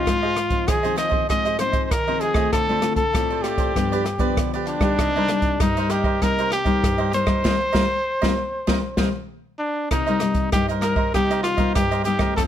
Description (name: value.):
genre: samba and choro.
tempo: 98 BPM.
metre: 4/4.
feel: straight.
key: C minor.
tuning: A4 = 444 Hz.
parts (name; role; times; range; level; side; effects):
clear trumpet; melody; 0.0-12.4 s; D4 to Eb5; -23 LUFS; equal; none.
cavaquinho; accompaniment; 0.0-12.5 s; Eb4 to Eb5; -28 LUFS; right 6 dB; none.
nylon-string guitar; accompaniment; 0.0-12.5 s; F2 to F4; -24 LUFS; left 4 dB; none.
open jazz drum kit; drums; 0.1-12.5 s; hi-hat, kick drum, rim click, snare drum; -24 LUFS; right 1 dB; none.
room: light reverb.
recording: none.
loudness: -19 LUFS.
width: side -10 dB against mid.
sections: 0.0-9.9 A section; 9.9-12.5 A section.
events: band accent 7.4-9.9.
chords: 0.1 Ab6; 2.5 Dm7; 3.8 G7; 5.0 Cm7.